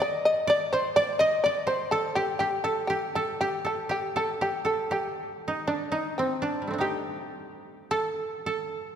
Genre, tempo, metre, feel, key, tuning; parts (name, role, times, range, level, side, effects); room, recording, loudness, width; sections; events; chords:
japanese traditional; 81 BPM; 4/4; rubato; A4 = 440 Hz
shamisen; melody; 0.0-8.6 s; C4 to Eb5; -27 LUFS; left 1 dB
koto; second line; 0.0-9.0 s; G3 to Eb5; -29 LUFS; right 3 dB
wet church reverb, RT60 3.0 s; minimal, uncompressed stereo recording; -25 LUFS; side -8 dB against mid
0.0-9.0 A section